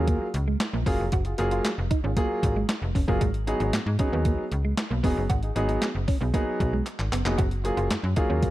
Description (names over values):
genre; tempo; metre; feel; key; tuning
early-eighties boogie funk; 115 BPM; 4/4; straight; F# major; A4 = 441 Hz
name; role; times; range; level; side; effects
warm concert grand piano; accompaniment; 0.0-8.5 s; F#3 to G#4; -29 LUFS; equal; none
semi-hollow electric guitar; riff; 0.0-8.5 s; G#3 to F#4; -33 LUFS; right 3 dB; analog chorus
slap-like FM bass; bass; 0.0-8.5 s; E#1 to G#2; -27 LUFS; equal; none
detuned 8-bit digital drum machine; drums; 0.1-8.5 s; handclaps, hi-hat, kick drum, snare drum; -27 LUFS; equal; overdrive
room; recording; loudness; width
digital ambience; dark, warm production; -23 LUFS; side -16 dB against mid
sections
0.0-8.5 A section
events
drum fill 6.9-7.4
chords
0.0 F#maj9; 3.2 G#m7; 7.4 F#maj9